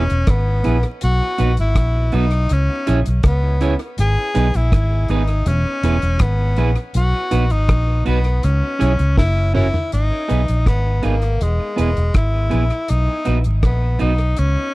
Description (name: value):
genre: roots reggae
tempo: 81 BPM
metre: 4/4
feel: straight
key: unclear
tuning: A4 = 438 Hz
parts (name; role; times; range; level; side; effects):
- breathy tenor saxophone; melody; 0.0-14.7 s; G#3 to G#4; -23 LUFS; left 2 dB; tape echo
- clean electric guitar; accompaniment; 0.0-14.1 s; B3 to C#5; -25 LUFS; right 5 dB; tape echo
- vintage muted fingered electric bass; bass; 0.0-14.6 s; E1 to C#2; -17 LUFS; equal; none
- deep reggae drum kit; drums; 0.1-14.5 s; hi-hat, kick drum, rim click, snare drum, toms; -19 LUFS; equal; tape echo
room: little or no reverb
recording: dry, close 1970s-style studio recording, vinyl crackle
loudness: -15 LUFS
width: side -20 dB against mid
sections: 0.0-9.9 A section; 9.9-14.7 B section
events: drum fill 9.2-9.9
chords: 0.0 E; 1.0 B; 2.5 C#m; 4.0 G#m; 5.5 E; 7.0 B; 8.4 C#m; 9.2 F#; 9.9 G#m; 11.4 E; 12.9 B